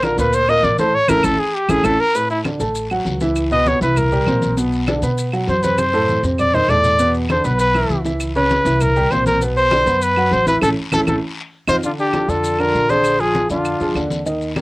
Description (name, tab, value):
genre	Afro-Cuban jazz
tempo	198 BPM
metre	4/4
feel	straight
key	D major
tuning	A4 = 440 Hz
part	warm trumpet	melody	0.0-14.1 s	E4 to Eb5	-16 LUFS	equal	cassette tape
part	warm baby grand piano	accompaniment	0.0-14.6 s	A2 to B5	-20 LUFS	right 1 dB	cassette tape
part	upright bass	bass	0.0-14.6 s	A1 to B2	-23 LUFS	equal	none
part	claves	percussion	0.0-14.6 s	none	-27 LUFS	right 4 dB	none
part	congas	percussion	0.0-14.6 s	none	-25 LUFS	left 2 dB	none
part	guiro	percussion	0.0-14.6 s	none	-35 LUFS	left 4 dB	none
part	maracas	percussion	0.0-14.6 s	none	-34 LUFS	left 4 dB	none
part	bright tenor recorder	second line	11.8-14.1 s	D4 to Ab4	-24 LUFS	left 3 dB	cassette tape
room	little or no reverb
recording	home recording on cassette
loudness	-15 LUFS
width	side -22 dB against mid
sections	0.0-2.1 A section; 2.1-11.8 A section; 11.8-14.6 B section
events	trumpet solo 0.0-11.8; band accent 0.9-2.1, 10.6-11.8; drum fill 5.8-7.0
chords	0.0 Bbmaj7; 0.9 A; 2.1 Dadd9; 3.4 C#m7; 4.0 C7; 4.6 Bm; 5.8 F#dim; 6.4 F7; 7.0 E5; 8.2 C#m7; 8.8 C7; 9.4 Bm7; 10.6 A; 11.2 F5; 11.8 Bbmaj7; 13.0 Bb7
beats	0.03 0.33 0.64 | 0.94 1.24 1.54 1.85 | 2.15 2.45 2.75 3.06 | 3.36 3.66 3.97 4.27 | 4.57 4.88 5.18 5.48 | 5.78 6.09 6.39 6.69 | 6.99 7.30 7.60 7.90 | 8.20 8.51 8.81 9.11 | 9.41 9.72 10.02 10.32 | 10.62 10.93 11.23 11.53 | 11.83 12.14 12.44 12.74 | 13.04 13.35 13.65 13.96 | 14.26 14.56